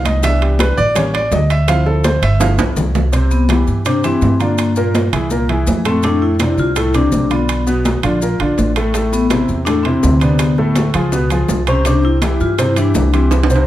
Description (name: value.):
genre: Afro-Cuban jazz.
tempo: 165 BPM.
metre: 4/4.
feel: straight.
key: C major.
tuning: A4 = 441 Hz.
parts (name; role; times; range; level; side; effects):
warm baby grand piano; accompaniment; 0.0-13.7 s; A2 to F5; -17 LUFS; right 1 dB; none.
upright bass; bass; 0.0-13.7 s; G1 to G2; -16 LUFS; equal; none.
bongos; percussion; 0.1-3.1, 8.9-13.7 s; none; -28 LUFS; left 5 dB; none.
congas; percussion; 0.1-13.7 s; none; -23 LUFS; left 1 dB; none.
maracas; percussion; 0.1-13.7 s; none; -32 LUFS; left 5 dB; none.
timbales; percussion; 0.1-13.6 s; none; -23 LUFS; right 7 dB; none.
vibraphone with medium hard mallets; melody; 3.3-13.5 s; Bb3 to F4; -18 LUFS; left 3 dB; none.
room: light reverb.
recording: none.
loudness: -12 LUFS.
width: side -13 dB against mid.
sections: 0.0-3.1 A section; 3.1-13.7 B section.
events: grand piano solo 0.0-3.1; drum fill 2.4-3.1, 13.3-13.7.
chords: 0.2 Cmaj9; 1.0 A7b9; 1.7 Dm7; 2.4 G13; 3.1 Cmaj9; 4.6 Gm7; 5.3 Caug7; 6.0 F6; 7.5 Bdim; 8.2 Bb; 8.9 Amadd9; 10.4 Dm7; 11.1 Db7; 11.9 Cadd9.